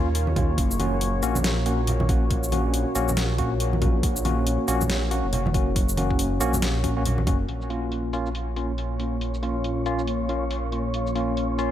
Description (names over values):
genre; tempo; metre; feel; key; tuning
deep dubstep; 139 BPM; 4/4; swing 60% on 16ths, half-time; Bb minor; A4 = 438 Hz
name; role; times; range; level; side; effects
deep dark ambient pad; sustained chords; 0.0-11.7 s; Bb3 to Db5; -31 LUFS; left 1 dB; chorus, built-in reverb
bright tine electric piano; stabs; 0.0-11.7 s; Bb3 to Gb4; -28 LUFS; left 1 dB; medium stereo tremolo, low-pass filter, dub echo
dark detuned saw bass; bass; 0.0-11.7 s; Gb1 to Eb2; -26 LUFS; equal; none
dubstep drum kit; drums; 0.1-11.7 s; hi-hat, shaker, snare drum; -30 LUFS; equal; overdrive, low-pass filter on hats, low-pass filter on cymbals, low-pass filter on perc, low-pass filter on snare
congas; percussion; 0.3-7.4 s; none; -31 LUFS; right 2 dB; dub echo
electronic kick drum; drums; 0.4-7.4 s; none; -25 LUFS; equal; overdrive
wind-like tuned noise texture; texture; 8.5-11.7 s; Db5; -35 LUFS; right 1 dB; built-in reverb
room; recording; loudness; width
light reverb, digital ambience; none; -22 LUFS; side -11 dB against mid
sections
0.0-7.5 A section; 7.5-11.7 B section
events
filter sweep on tine electric piano 7.5-11.7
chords
0.0 Bbm; 0.6 Gb; 7.5 Bbm